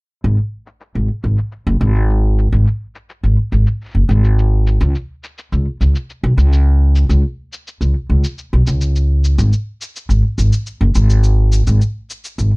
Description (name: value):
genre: folktronica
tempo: 105 BPM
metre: 4/4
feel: straight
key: G# minor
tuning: A4 = 441 Hz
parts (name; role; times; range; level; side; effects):
- upright bass; bass; 0.2-12.5 s; F#1 to C#2; -12 LUFS; equal; tube saturation
- shaker; drums; 0.2-12.5 s; none; -32 LUFS; left 2 dB; low-pass filter on perc
room: little or no reverb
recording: dark, warm production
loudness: -13 LUFS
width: side -34 dB against mid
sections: 0.2-12.6 A section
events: filter sweep on drum 0.2-12.6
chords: none